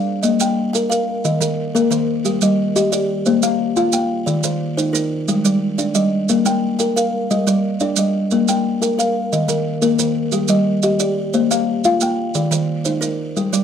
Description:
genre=southern african traditional, mbira-style interlocking cycle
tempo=119 BPM (dotted quarters)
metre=12/8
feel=straight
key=Bb major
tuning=A4 = 440 Hz
part: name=buzzing kalimba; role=arpeggios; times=0.0-13.6 s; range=Eb3 to G5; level=-18 LUFS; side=left 4 dB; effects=none
part: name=buzzing kalimba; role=arpeggios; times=0.0-13.6 s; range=Eb3 to G5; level=-20 LUFS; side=right 3 dB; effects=none
part: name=maracas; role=percussion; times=0.2-13.6 s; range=none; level=-24 LUFS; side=right 9 dB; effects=none
room=light reverb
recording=close, detailed microphones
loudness=-16 LUFS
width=side -8 dB against mid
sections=0.2-13.6 A section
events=none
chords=0.2 Bb5; 1.2 Eb5; 2.3 G5; 3.3 Bb; 4.3 Eb; 5.3 Gm; 6.3 Bb5; 7.3 Gm; 8.3 Bb5; 9.3 Eb5; 10.3 G5; 11.3 Bb; 12.3 Eb

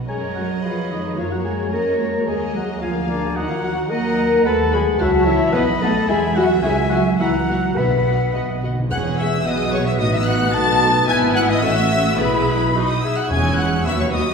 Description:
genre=quick classical-period movement for symphony orchestra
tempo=109 BPM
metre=2/4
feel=straight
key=F# major, E major from 4.5 s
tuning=A4 = 440 Hz
part: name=rich studio violin section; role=melody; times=0.0-14.3 s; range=B4 to A6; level=-26 LUFS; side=left 3 dB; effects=none
part: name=warm studio viola section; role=accompaniment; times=0.0-14.3 s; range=F#3 to A#4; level=-27 LUFS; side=right 1 dB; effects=none
part: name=dark studio violin section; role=second line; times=0.1-14.2 s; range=A#4 to B5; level=-28 LUFS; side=left 2 dB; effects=none
part: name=silver concert flute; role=second line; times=0.1-14.2 s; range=B4 to B5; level=-27 LUFS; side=left 2 dB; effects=none
part: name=warm clarinet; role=second line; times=0.1-14.3 s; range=F#4 to G#5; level=-29 LUFS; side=left 3 dB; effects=none
part: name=warm oboe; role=second line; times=0.1-14.3 s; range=B4 to B5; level=-29 LUFS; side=right 1 dB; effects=none
part: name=warm French horn section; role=sustained chords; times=0.1-14.3 s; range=F#3 to B4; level=-22 LUFS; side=left 3 dB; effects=none
part: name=dark studio cello section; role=bass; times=0.1-14.3 s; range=D#2 to B3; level=-25 LUFS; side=right 3 dB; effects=none
part: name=warm studio double bass section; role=bass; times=0.1-14.3 s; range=E1 to F#2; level=-25 LUFS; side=right 3 dB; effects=none
part: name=timpani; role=percussion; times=5.5-9.4, 13.3-13.8 s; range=E2 to B2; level=-26 LUFS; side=equal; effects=none
room=wet scoring stage reverb, RT60 1.5 s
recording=heard from further back in the room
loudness=-16 LUFS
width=side -5 dB against mid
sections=0.1-8.9 A section; 8.9-14.3 B section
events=timpani fill 8.3-8.9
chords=0.1 F#; 0.6 C#7/E#; 1.2 F#; 2.3 D#m; 2.8 A#7/D; 3.4 D#m; 4.5 B/D#; 5.0 A/C#; 5.5 B; 6.1 E; 6.6 C#m; 7.2 F#7/C#; 7.8 Bsus4; 8.9 E; 9.5 B; 10.0 B7/A; 11.1 E/G#; 11.6 F#m7/A; 12.2 E/B; 12.8 B; 13.3 C#m/E

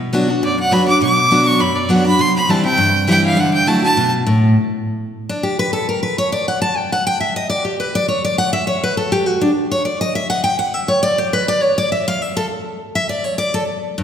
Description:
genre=bluegrass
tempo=204 BPM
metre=4/4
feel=straight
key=D major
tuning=A4 = 439 Hz
part: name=picked steel-string acoustic guitar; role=accompaniment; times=0.0-14.0 s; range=F#2 to A5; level=-16 LUFS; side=equal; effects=none
part: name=rich fiddle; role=melody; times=0.4-4.1 s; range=D5 to D6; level=-15 LUFS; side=right 1 dB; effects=none
room=wet concert hall reverb, RT60 2.0 s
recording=recorded in a church or concert hall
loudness=-14 LUFS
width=side -8 dB against mid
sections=0.0-4.6 A section; 4.6-14.0 A section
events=fiddle solo 0.0-4.6; steel-string acoustic guitar solo 4.6-14.0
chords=0.0 Bm; 2.2 C; 3.4 Dadd9; 4.6 N.C.

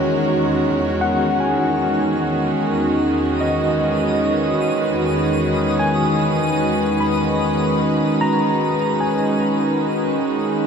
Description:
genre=ambient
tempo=75 BPM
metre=4/4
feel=straight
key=unclear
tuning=A4 = 439 Hz
part: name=rich studio string section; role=sustained chords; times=0.0-10.7 s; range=E2 to B4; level=-18 LUFS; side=equal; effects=none
part: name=overdriven tine electric piano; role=arpeggios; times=0.0-10.7 s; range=C#5 to B5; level=-23 LUFS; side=equal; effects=fast tremolo, diffuse ambient delay
part: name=twinkling granular texture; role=texture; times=0.0-10.7 s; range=A#5 to D#6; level=-32 LUFS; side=left 1 dB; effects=built-in reverb
part: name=analog drone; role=drone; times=6.4-10.7 s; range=G#3 to D#4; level=-26 LUFS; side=right 1 dB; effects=chorus
room=wet huge ambient reverb, RT60 8.0 s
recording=dark, warm production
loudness=-16 LUFS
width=side -6 dB against mid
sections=0.0-1.4 A section; 1.4-10.7 B section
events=fade-in on synth drone 1.4-10.7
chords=0.0 Emaj9; 1.4 Emaj7; 7.8 G#m7

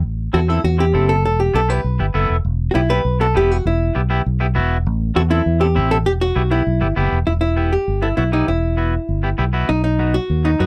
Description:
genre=latin, cumbia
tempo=199 BPM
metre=4/4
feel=straight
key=E minor, E harmonic minor from 7.3 s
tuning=A4 = 441 Hz
part: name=fingered electric bass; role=bass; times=0.0-10.7 s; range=E1 to F#2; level=-20 LUFS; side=equal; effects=none
part: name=hollow-body jazz guitar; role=melody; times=0.3-10.7 s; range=D#4 to B4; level=-22 LUFS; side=equal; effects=none
part: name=clean electric guitar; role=accompaniment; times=0.3-10.7 s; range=B3 to A4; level=-25 LUFS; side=equal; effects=none
room=light reverb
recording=dark, warm production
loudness=-18 LUFS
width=mono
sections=0.0-7.3 A section; 7.3-10.7 B section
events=none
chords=0.0 Am; 1.2 Em; 4.9 Am; 6.1 Em; 9.7 B

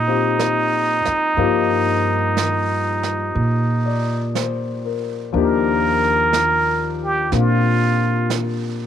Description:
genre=jazz ballad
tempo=61 BPM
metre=4/4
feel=swing 68% on 8ths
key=Eb major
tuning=A4 = 441 Hz
part: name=trumpet with plunger mute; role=melody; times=0.0-8.3 s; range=Eb4 to Bb4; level=-19 LUFS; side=right 2 dB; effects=none
part: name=clear concert grand piano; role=accompaniment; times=0.0-8.9 s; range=F3 to D5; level=-23 LUFS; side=left 11 dB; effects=none
part: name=upright bass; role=bass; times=0.0-8.9 s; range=Eb2 to Bb2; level=-22 LUFS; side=right 2 dB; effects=none
part: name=jazz brush drum kit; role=drums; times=0.4-8.9 s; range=brushed snare drum, hi-hat, snare drum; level=-30 LUFS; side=right 9 dB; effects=none
room=light reverb, small room ambience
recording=1960s-style stereo with parts hard left and right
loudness=-16 LUFS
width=side -9 dB against mid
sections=0.0-5.3 A section; 5.3-8.9 B section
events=muted trumpet solo 5.3-8.9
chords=0.0 Ebmaj9

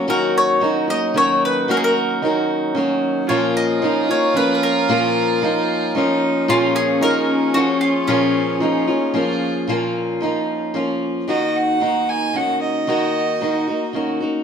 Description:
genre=acoustic folk duo or small band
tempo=113 BPM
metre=3/4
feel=straight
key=Eb minor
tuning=A4 = 440 Hz
part: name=picked steel-string acoustic guitar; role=accompaniment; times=0.0-14.4 s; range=Bb2 to Gb4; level=-20 LUFS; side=left 2 dB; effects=none
part: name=hand-pumped harmonium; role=sustained chords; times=0.0-9.7 s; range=F3 to Db5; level=-27 LUFS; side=left 2 dB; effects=none
part: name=felt-muted upright piano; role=arpeggios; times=0.0-14.4 s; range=Db4 to Gb4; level=-23 LUFS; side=right 5 dB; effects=none
part: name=mandolin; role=melody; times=0.1-9.1 s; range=Db4 to Eb5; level=-21 LUFS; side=left 1 dB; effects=none
part: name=warm fiddle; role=second line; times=3.3-14.2 s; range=Db4 to Ab5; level=-22 LUFS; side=right 1 dB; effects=none
room=wet large studio reverb, RT60 0.9 s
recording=band playing live in one room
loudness=-16 LUFS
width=side -7 dB against mid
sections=0.0-9.7 A section; 9.7-11.3 B section; 11.3-14.4 C section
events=fiddle solo 11.3-14.4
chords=0.1 Ebm7; 3.3 Bbm; 11.3 Ebm

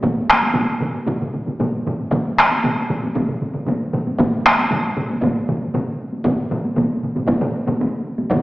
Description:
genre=japanese traditional, taiko drum ensemble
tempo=116 BPM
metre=4/4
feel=straight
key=none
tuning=none
part: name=taiko ensemble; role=percussion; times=0.0-8.4 s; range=none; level=-22 LUFS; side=equal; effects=none
part: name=taiko ensemble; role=percussion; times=0.0-8.4 s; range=none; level=-23 LUFS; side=left 1 dB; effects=none
part: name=taiko ensemble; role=percussion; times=0.0-8.4 s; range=none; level=-22 LUFS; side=right 1 dB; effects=none
part: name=taiko ensemble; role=percussion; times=0.0-8.4 s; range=none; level=-26 LUFS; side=equal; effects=none
room=wet recital hall reverb, RT60 1.7 s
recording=recorded in a church or concert hall, small speaker sound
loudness=-17 LUFS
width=side -17 dB against mid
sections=0.1-8.4 A section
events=none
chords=none

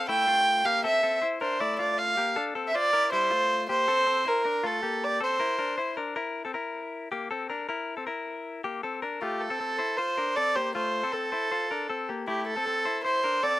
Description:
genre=indie pop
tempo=157 BPM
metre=4/4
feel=straight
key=F major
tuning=A4 = 439 Hz
part: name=warm violin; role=melody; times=0.0-5.9, 9.2-13.6 s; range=G4 to G5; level=-25 LUFS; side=right 1 dB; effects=none
part: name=direct-recorded clean electric guitar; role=arpeggios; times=0.0-13.6 s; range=G3 to C5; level=-31 LUFS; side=left 4 dB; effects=slapback echo
room=little or no reverb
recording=recorded outdoors, with no room sound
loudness=-25 LUFS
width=side -16 dB against mid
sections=0.0-6.2 A section; 6.2-9.2 B section; 9.2-13.6 C section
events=none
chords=0.0 Bbmaj7sus2/A; 1.4 Bbmaj7; 2.9 C7; 4.6 Bbmaj13/A; 5.4 C7; 9.2 F; 12.3 Am

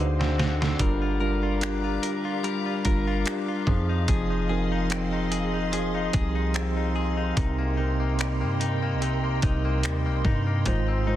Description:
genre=contemporary R&B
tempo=73 BPM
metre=4/4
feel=swing 54% on 16ths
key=C minor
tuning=A4 = 441 Hz
part: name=mellow tine electric piano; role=accompaniment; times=0.0-11.2 s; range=Ab2 to C5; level=-28 LUFS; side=right 2 dB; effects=medium stereo tremolo
part: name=glassy FM pad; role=sustained chords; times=0.0-11.2 s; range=G4 to C6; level=-34 LUFS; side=left 1 dB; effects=ensemble chorus, built-in reverb
part: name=direct-recorded clean electric guitar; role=arpeggios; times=0.0-11.2 s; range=Ab2 to Bb4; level=-32 LUFS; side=left 6 dB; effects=digital delay
part: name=warm 808-style bass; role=bass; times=0.0-11.2 s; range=F1 to G2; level=-28 LUFS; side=equal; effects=none
part: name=detuned 8-bit digital drum machine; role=drums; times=0.2-10.9 s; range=finger snaps, hi-hat, kick drum, snare drum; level=-28 LUFS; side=equal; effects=soft clipping on snare
room=light reverb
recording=dense, heavily limited modern master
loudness=-23 LUFS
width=side -12 dB against mid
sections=0.0-11.2 A section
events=drum fill 0.0-0.8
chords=0.0 D7; 0.8 Gm7; 3.7 Fm7; 7.4 Cm7; 10.7 Ab6

